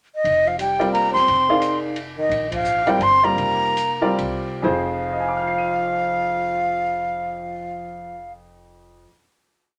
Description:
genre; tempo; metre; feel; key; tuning
modal jazz; 123-176 BPM; 3/4; swing 62% on 8ths; F dorian; A4 = 441 Hz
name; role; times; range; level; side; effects
breathy bright jazz flute; melody; 0.2-8.3 s; Eb5 to C6; -22 LUFS; equal; none
upright bass; bass; 0.2-9.0 s; F1 to Eb2; -38 LUFS; equal; none
open jazz drum kit; drums; 0.3-4.3 s; hi-hat, kick drum, ride cymbal, snare drum; -38 LUFS; equal; none
mellow trombone; second line; 0.5-8.3 s; Eb3 to C4; -32 LUFS; equal; none
clear baby grand piano; accompaniment; 0.8-9.2 s; F2 to Eb7; -26 LUFS; equal; none
room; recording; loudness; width
moderate small room reverb, RT60 0.5 s; none; -21 LUFS; mono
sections
0.0-0.3 pickup bar; 0.3-4.6 A section; 4.6-7.6 final chord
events
slowing down 2.3-4.6; band accent 2.5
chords
0.3 F9sus4; 4.6 Fm

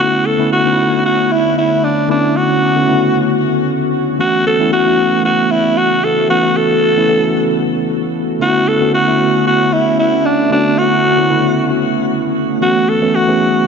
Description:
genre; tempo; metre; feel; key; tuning
amapiano; 114 BPM; 4/4; swing 55% on 16ths; B minor; A4 = 440 Hz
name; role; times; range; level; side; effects
breathy alto saxophone; melody; 0.0-13.7 s; D4 to A4; -14 LUFS; equal; ping-pong delay
mellow tine electric piano; accompaniment; 0.0-13.7 s; C#3 to A4; -16 LUFS; left 1 dB; medium stereo tremolo
glassy FM pad; sustained chords; 0.7-13.7 s; C#3 to F#4; -19 LUFS; right 1 dB; ensemble chorus, built-in reverb
room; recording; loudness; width
moderate lush hall reverb, RT60 2.8 s; nothing above 7.5 kHz; -11 LUFS; side -6 dB against mid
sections
0.0-13.7 A section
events
none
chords
0.0 Bm11; 4.2 A69; 8.4 Bm11; 12.6 A69

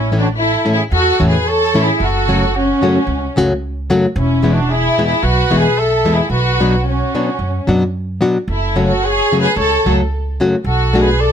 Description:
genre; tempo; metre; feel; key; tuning
mexican folk, mariachi; 111 BPM; 4/4; swing 54% on 8ths; unclear; A4 = 440 Hz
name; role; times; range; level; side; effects
warm studio violin section; melody; 0.0-11.3 s; C#4 to A4; -16 LUFS; left 1 dB; plate reverb
mellow trumpet; second line; 0.0-11.3 s; E4 to E5; -23 LUFS; right 7 dB; none
upright bass; bass; 0.0-11.3 s; E1 to F#2; -18 LUFS; right 1 dB; none
nylon-string guitar; accompaniment; 0.1-11.1 s; E2 to F#4; -15 LUFS; left 2 dB; none
room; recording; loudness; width
light reverb; none; -13 LUFS; side -8 dB against mid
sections
0.0-11.3 A section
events
none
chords
0.0 A; 2.0 F#m; 4.2 E; 6.3 Bm; 8.5 F#m; 10.6 Bm7

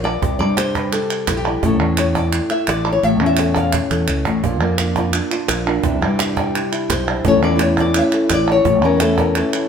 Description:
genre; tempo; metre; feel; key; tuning
flamenco; 171 BPM; 4/4; straight; A phrygian dominant; A4 = 443 Hz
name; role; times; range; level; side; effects
flamenco guitar; melody; 0.0-9.7 s; A2 to F5; -18 LUFS; left 3 dB; none
fretless electric bass; bass; 0.0-9.4 s; A1 to G2; -21 LUFS; right 1 dB; none
palmas hand claps; percussion; 0.1-9.7 s; none; -23 LUFS; right 4 dB; none
cajon; percussion; 0.2-9.7 s; none; -25 LUFS; right 5 dB; none
flamenco guitar; stabs; 4.4-9.7 s; C3 to F4; -26 LUFS; right 5 dB; none
room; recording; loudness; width
moderate stone room reverb, RT60 1.1 s; band playing live in one room; -15 LUFS; side -7 dB against mid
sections
0.0-9.7 A section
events
drum fill 3.0-4.4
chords
0.2 C5; 1.6 A; 4.4 Bb; 5.8 Cadd9; 7.2 A

